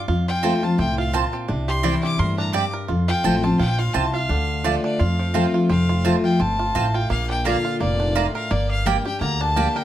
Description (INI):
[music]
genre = bluegrass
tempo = 171 BPM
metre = 4/4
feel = swing 56% on 8ths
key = F major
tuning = A4 = 441 Hz
[part]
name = bluegrass banjo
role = melody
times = 0.0-9.8 s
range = F3 to Bb4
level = -29 LUFS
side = right 6 dB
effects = none
[part]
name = picked steel-string acoustic guitar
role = accompaniment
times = 0.0-9.8 s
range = F2 to G4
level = -23 LUFS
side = left 2 dB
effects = none
[part]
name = upright bass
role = bass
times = 0.1-9.6 s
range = F1 to G2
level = -24 LUFS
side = equal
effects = none
[part]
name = clear fiddle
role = melody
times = 0.3-9.8 s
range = D5 to D6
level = -26 LUFS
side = left 2 dB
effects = none
[part]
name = mandolin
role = stabs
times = 0.4-9.7 s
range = A3 to Bb5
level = -24 LUFS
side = right 9 dB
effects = none
[sound]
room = moderate studio reverb, RT60 0.6 s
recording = none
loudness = -18 LUFS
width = side -12 dB against mid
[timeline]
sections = 0.0-5.7 A section; 5.7-9.8 B section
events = none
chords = 0.1 F; 1.5 Cadd9; 2.9 F; 4.3 Dm; 5.0 F; 7.1 Bb; 8.5 Gm